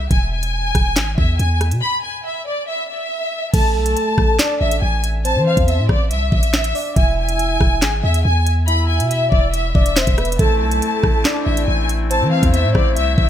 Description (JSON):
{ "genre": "hip hop, drill", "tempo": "140 BPM", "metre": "4/4", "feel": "half-time", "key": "A harmonic minor", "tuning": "A4 = 439 Hz", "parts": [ { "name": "warm studio violin section", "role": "melody", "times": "0.0-13.3 s", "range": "D5 to B5", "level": "-21 LUFS", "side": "left 2 dB", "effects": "digital delay" }, { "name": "long sustained 808-style bass", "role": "bass", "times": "0.0-13.3 s", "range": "E1 to E3", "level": "-19 LUFS", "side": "equal", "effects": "none" }, { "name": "drill drum kit", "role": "drums", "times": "0.1-13.3 s", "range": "crash cymbal, handclaps, hi-hat, kick drum, rim click, snare drum", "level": "-17 LUFS", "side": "equal", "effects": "none" }, { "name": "soft octave-layered synth lead", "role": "second line", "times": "3.5-12.9 s", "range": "A4 to G#5", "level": "-22 LUFS", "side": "equal", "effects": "chorus, phaser, digital delay" }, { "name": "pipe organ, soft reed", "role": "sustained chords", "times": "10.4-13.3 s", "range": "A3 to E4", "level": "-26 LUFS", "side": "left 5 dB", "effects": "none" } ], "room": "light reverb", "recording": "none", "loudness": "-15 LUFS", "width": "side -10 dB against mid", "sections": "0.0-3.5 A section; 3.5-13.3 B section", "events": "break 1.8-3.5", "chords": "0.1 E; 3.5 Am; 7.0 E; 10.4 Am" }